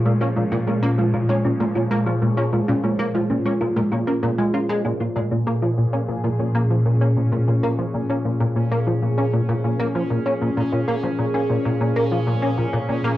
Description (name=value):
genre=ambient, sequencer-driven space music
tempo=97 BPM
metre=4/4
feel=straight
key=Bb minor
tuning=A4 = 440 Hz
part: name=phased analog pad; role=sustained chords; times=0.0-13.2 s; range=Bb2 to Db5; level=-22 LUFS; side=equal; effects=phaser, chorus, cassette tape
part: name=thumb-piano-like synth pluck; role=arpeggios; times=0.1-5.0 s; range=Ab3 to Ab4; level=-24 LUFS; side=right 2 dB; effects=chorus, auto-pan, cassette tape, analog delay
part: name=plucky analog bass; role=riff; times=0.1-13.1 s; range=Bb2 to F4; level=-23 LUFS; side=equal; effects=ensemble chorus, cassette tape, analog delay
part: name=bubbling stepped-filter texture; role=texture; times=5.0-13.2 s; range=Db4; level=-38 LUFS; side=right 3 dB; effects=chorus, built-in reverb, cassette tape
room=wet studio reverb, RT60 0.5 s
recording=home recording on cassette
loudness=-18 LUFS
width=side -14 dB against mid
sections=0.0-5.0 A section; 5.0-13.2 B section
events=fade-in on synth texture 5.0-13.2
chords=0.0 Bbm7